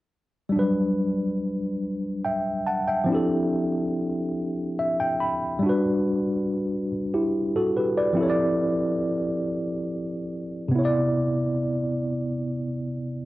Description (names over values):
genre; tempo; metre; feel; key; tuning
R&B; 47 BPM (dotted quarters); 6/8; straight; G major; A4 = 440 Hz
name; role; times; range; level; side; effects
tine electric piano; solo; 0.5-13.3 s; C3 to B5; -23 LUFS; equal; overdrive, fast stereo tremolo
room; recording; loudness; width
moderate studio reverb, RT60 0.5 s; home recording on cassette; -23 LUFS; side -17 dB against mid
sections
0.5-5.6 A section; 5.6-13.3 B section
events
tine electric piano fill 4.4-5.6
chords
0.5 Gmaj7; 3.1 Fmaj13; 5.6 Gmaj7; 8.2 Fmaj13; 10.7 Cmaj9